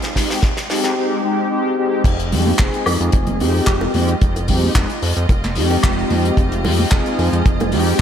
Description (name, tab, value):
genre	nu-disco, nu disco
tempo	111 BPM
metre	4/4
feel	swing 53% on 16ths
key	F minor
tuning	A4 = 435 Hz
part	rich symphonic string section	sustained chords	0.0-8.0 s	F4 to F5	-29 LUFS	right 2 dB	sidechain pumping
part	fat analog bass	bass	0.0-7.9 s	F1 to F2	-20 LUFS	equal	high-pass filter
part	damped 70s drum kit	drums	0.0-7.8 s	crash cymbal, handclaps, hi-hat, snare drum, woodblock	-24 LUFS	left 2 dB	high-pass filter on hats, high-pass filter on cymbals, high-pass filter on snare, high-pass filter on perc, high-pass filter on room
part	mellow synth brass	accompaniment	0.2-8.0 s	Ab3 to Ab4	-20 LUFS	left 1 dB	chorus, ping-pong delay
part	kick drum	drums	0.2-7.6 s	none	-17 LUFS	equal	none
part	congas and bongos	percussion	2.3-7.7 s	none	-26 LUFS	right 2 dB	none
room	moderate lush hall reverb, RT60 2.3 s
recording	bright 1980s-style digital production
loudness	-15 LUFS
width	side -9 dB against mid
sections	0.0-2.1 A section; 2.1-8.0 B section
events	build-up 0.0-2.1; drum fill 0.0-1.0; drop 2.1-8.0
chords	0.0 Fm7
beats	0.43 0.97 1.51 | 2.05 2.59 3.13 3.67 | 4.21 4.75 5.29 5.84 | 6.38 6.92 7.46 8.00